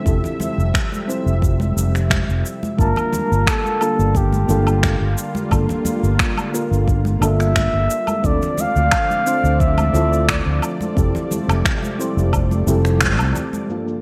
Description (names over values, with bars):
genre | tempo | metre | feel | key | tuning
sunset chillout | 88 BPM | 4/4 | straight | G dorian | A4 = 440 Hz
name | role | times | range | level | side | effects
mellow FM electric piano | accompaniment | 0.0-14.0 s | G2 to A5 | -27 LUFS | equal | chorus, tremolo, digital delay, shimmer reverb
lush unison pad | sustained chords | 0.0-14.0 s | C3 to E5 | -29 LUFS | equal | chorus, shimmer reverb
fretless electric bass | bass | 0.1-13.3 s | F1 to D2 | -20 LUFS | equal | none
electronic kick drum | drums | 0.1-13.2 s | none | -23 LUFS | equal | small room ambience
electronic shaker, finger snaps and woodblock | drums | 0.1-14.0 s | none | -26 LUFS | equal | low-pass filter on perc, small room ambience, low-pass filter on snare, gated reverb
congas | percussion | 0.2-13.7 s | none | -31 LUFS | equal | none
trumpet with bucket mute | melody | 2.8-10.6 s | G4 to F5 | -24 LUFS | equal | digital delay, shimmer reverb
room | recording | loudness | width
moderate lush hall reverb, RT60 1.6 s | bright 1980s-style digital production | -18 LUFS | mono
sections
0.0-13.7 A section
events
band accent 13.0-13.4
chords
0.1 Fmaj9; 2.8 Gm9; 8.2 Dm9; 11.0 Fmaj9